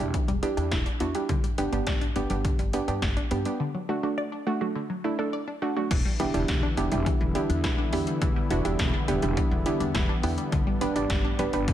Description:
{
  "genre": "synth-pop",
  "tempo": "104 BPM",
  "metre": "4/4",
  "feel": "straight",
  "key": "E minor",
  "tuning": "A4 = 439 Hz",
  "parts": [
    { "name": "soft round pluck", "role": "accompaniment", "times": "0.0-11.7 s", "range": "A3 to D5", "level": "-29 LUFS", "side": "right 3 dB", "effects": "chorus" },
    { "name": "wide unison pluck", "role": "arpeggios", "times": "0.0-11.7 s", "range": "D3 to D5", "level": "-34 LUFS", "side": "left 3 dB", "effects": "tape echo" },
    { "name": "upright bass", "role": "bass", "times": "0.0-11.7 s", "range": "E1 to G2", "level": "-31 LUFS", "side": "equal", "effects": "none" },
    { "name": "punchy analog drum machine", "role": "drums", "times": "0.1-11.7 s", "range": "crash cymbal, hi-hat, kick drum, snare drum", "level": "-28 LUFS", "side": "equal", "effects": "none" },
    { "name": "warm analog pad", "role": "sustained chords", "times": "5.9-11.7 s", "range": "D3 to E4", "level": "-31 LUFS", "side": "left 2 dB", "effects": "chorus" }
  ],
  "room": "light reverb",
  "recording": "none",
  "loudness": "-24 LUFS",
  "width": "side -11 dB against mid",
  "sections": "0.0-5.9 A section; 5.9-11.7 B section",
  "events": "break 3.6-5.9",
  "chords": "0.0 Em7; 1.3 G; 3.6 D; 5.9 Em7; 10.5 G",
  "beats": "0.14 0.72 | 1.29 1.87 2.45 3.02 | 3.60 4.18 4.75 5.33 | 5.91 6.49 7.06 7.64 | 8.22 8.79 9.37 9.95 | 10.52 11.10 11.68"
}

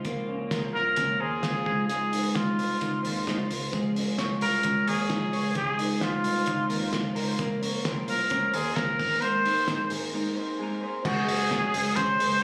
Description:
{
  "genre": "jangly indie pop",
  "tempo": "131 BPM",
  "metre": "4/4",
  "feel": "straight",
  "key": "unclear",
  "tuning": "A4 = 440 Hz",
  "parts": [
    { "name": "clean electric guitar", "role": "accompaniment", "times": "0.0-12.4 s", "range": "Db3 to Bb4", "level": "-38 LUFS", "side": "equal", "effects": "analog chorus" },
    { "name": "electric guitar through a small old amp", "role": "arpeggios", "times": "0.0-12.4 s", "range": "Ab3 to Db5", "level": "-33 LUFS", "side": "equal", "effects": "warbly pitch drift" },
    { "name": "vintage muted picked electric bass", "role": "bass", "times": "0.0-12.4 s", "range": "Gb1 to Eb2", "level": "-38 LUFS", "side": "equal", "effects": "none" },
    { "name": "cloth-damped thuddy drum kit", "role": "drums", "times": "0.0-12.3 s", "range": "crash cymbal, hi-hat, kick drum, snare drum", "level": "-35 LUFS", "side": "equal", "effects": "none" },
    { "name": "breathy trumpet", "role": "melody", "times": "0.7-12.4 s", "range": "F4 to C5", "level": "-29 LUFS", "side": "equal", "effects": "none" }
  ],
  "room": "moderate echo chamber reverb, RT60 1.5 s",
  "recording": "recorded on a phone in the room, studio reverb",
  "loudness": "-27 LUFS",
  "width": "mono",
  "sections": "0.0-11.1 A section; 11.1-12.4 B section",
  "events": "break 10.1-11.1",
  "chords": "0.1 Bbmadd9; 1.7 Ab6; 7.4 Bbmadd9; 9.0 Abadd9; 11.1 Gbsus2",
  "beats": "| 0.06 0.52 0.98 1.44 | 1.90 2.35 2.81 3.27 | 3.73 4.19 4.65 5.11 | 5.56 6.02 6.48 6.94 | 7.40 7.85 8.31 8.77 | 9.23 9.68 10.14 10.60 | 11.05 11.51 11.97 12.43"
}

